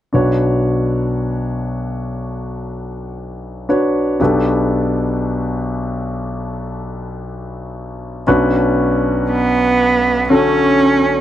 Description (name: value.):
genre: pop.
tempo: 59 BPM.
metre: 4/4.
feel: straight.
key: B minor.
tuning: A4 = 440 Hz.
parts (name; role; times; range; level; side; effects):
clear concert grand piano; accompaniment; 0.1-11.2 s; B1 to C#5; -16 LUFS; left 1 dB; none.
rich cello; melody; 9.3-11.2 s; B3 to C#4; -13 LUFS; right 3 dB; slapback echo.
room: light reverb.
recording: dry, close 1970s-style studio recording.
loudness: -14 LUFS.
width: side -12 dB against mid.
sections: 0.1-8.3 A section; 8.3-11.2 B section.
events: none.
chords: 0.1 Bmadd9; 4.2 Gadd9/B; 8.3 Bmadd9.